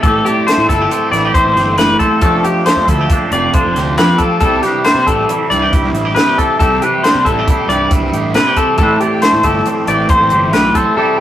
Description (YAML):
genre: math rock and midwest emo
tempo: 137 BPM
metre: 5/4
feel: straight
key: C major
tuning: A4 = 436 Hz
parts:
  - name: twangy electric guitar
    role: accompaniment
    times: 0.0-11.2 s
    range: G2 to D5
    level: -16 LUFS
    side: right 3 dB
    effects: none
  - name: twangy electric guitar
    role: arpeggios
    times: 0.0-11.2 s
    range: G4 to D5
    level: -14 LUFS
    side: left 2 dB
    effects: vibrato effect
  - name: biting overdriven guitar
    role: riff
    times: 0.0-11.2 s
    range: A2 to F4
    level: -22 LUFS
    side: right 1 dB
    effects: phaser
  - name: fuzz picked electric bass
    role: bass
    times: 0.0-10.7 s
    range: F1 to C3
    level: -21 LUFS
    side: equal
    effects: overdrive
  - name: compact cocktail drum kit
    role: drums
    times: 0.0-10.9 s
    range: hi-hat, kick drum, snare drum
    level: -16 LUFS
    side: equal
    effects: none
room: moderate small room reverb, RT60 0.5 s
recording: rough rehearsal-room recording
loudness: -10 LUFS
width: side -12 dB against mid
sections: 0.0-11.2 A section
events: none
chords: 0.0 Am7; 2.2 F69; 4.4 C6; 8.8 Am9